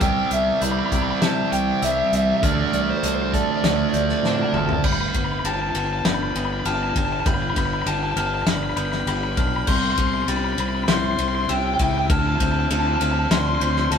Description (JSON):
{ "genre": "post-rock", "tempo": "99 BPM", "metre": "4/4", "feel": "straight", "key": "unclear", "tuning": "A4 = 440 Hz", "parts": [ { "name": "raw garage guitar", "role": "melody", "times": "0.0-14.0 s", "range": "C5 to C6", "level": "-25 LUFS", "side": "left 2 dB", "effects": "overdrive" }, { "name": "icy glass pad", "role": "sustained chords", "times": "0.0-14.0 s", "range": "D3 to A5", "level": "-35 LUFS", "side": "equal", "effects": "none" }, { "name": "electric guitar through a small old amp", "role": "arpeggios", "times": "0.0-14.0 s", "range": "G2 to A4", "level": "-29 LUFS", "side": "left 2 dB", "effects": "none" }, { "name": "glockenspiel with hard plastic mallets", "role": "arpeggios", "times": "0.0-14.0 s", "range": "E6 to A6", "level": "-30 LUFS", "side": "right 1 dB", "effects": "none" }, { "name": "fuzz guitar", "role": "riff", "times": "0.0-4.8 s", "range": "C3 to D4", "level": "-23 LUFS", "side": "right 5 dB", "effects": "distortion" }, { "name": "growling fingered electric bass", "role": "bass", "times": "0.0-14.0 s", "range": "F#1 to C3", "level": "-26 LUFS", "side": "equal", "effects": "overdrive" }, { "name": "loose indie drum kit", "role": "drums", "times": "0.0-14.0 s", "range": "crash cymbal, hi-hat, kick drum, ride cymbal, snare drum, toms", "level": "-24 LUFS", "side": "left 1 dB", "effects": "none" } ], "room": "wet studio reverb, RT60 0.5 s", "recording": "band playing live in one room", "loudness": "-19 LUFS", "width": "side -7 dB against mid", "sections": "0.0-4.8 A section; 4.8-14.0 B section", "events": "drum fill 4.2-4.8; build-up 4.8-14.0", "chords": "0.0 C; 2.4 Dm7; 4.8 G; 9.7 C; 12.1 Dm7" }